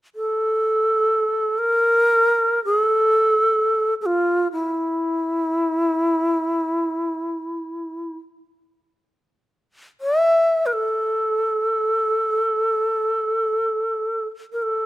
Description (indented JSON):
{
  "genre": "japanese traditional, Japanese chamber music",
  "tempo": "free time",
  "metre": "none",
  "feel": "none",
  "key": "unclear",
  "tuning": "A4 = 440 Hz",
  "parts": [
    { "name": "breathy bright long shakuhachi", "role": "solo", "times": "0.2-14.9 s", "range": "E4 to E5", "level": "-18 LUFS", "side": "equal", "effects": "none" }
  ],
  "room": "light reverb",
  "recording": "close, detailed microphones",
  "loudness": "-18 LUFS",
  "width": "side -16 dB against mid",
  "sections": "0.0-14.9 A section",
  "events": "none",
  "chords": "none"
}